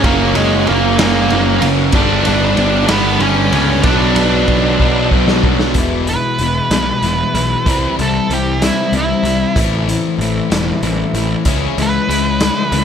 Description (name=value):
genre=quiet-loud alternative rock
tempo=63 BPM (dotted quarters)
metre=6/8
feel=straight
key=unclear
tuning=A4 = 441 Hz
part: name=octave-fuzz lead guitar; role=melody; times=0.0-12.8 s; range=G#3 to D5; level=-18 LUFS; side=right 2 dB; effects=distortion, tape echo
part: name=rich symphonic string section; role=sustained chords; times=0.0-5.7 s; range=B3 to C#6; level=-26 LUFS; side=left 1 dB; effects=none
part: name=distorted electric guitar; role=riff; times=0.0-5.8 s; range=F#2 to D4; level=-20 LUFS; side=equal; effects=distortion
part: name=fuzz guitar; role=riff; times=0.0-5.7 s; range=F#2 to D4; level=-20 LUFS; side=right 14 dB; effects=distortion
part: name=thick fuzz guitar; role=riff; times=0.0-12.8 s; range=E2 to D4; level=-19 LUFS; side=left 11 dB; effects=distortion
part: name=fuzz picked electric bass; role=bass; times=0.0-12.8 s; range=E1 to C#2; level=-19 LUFS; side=equal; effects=overdrive
part: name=raw garage drum kit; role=drums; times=0.0-12.8 s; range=hi-hat, kick drum, ride cymbal, snare drum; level=-19 LUFS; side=equal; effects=none
part: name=clean electric guitar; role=arpeggios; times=5.8-12.8 s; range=E3 to E4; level=-22 LUFS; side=right 4 dB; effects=analog chorus, tape echo
room=little or no reverb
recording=none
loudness=-12 LUFS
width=side -8 dB against mid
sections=0.0-5.8 A section; 5.8-12.8 B section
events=drum fill 4.8-5.8; lead electric guitar solo 5.8-12.8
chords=0.0 F#; 1.9 G; 3.8 Bm; 5.8 E; 7.7 C; 9.6 Am; 11.5 C#m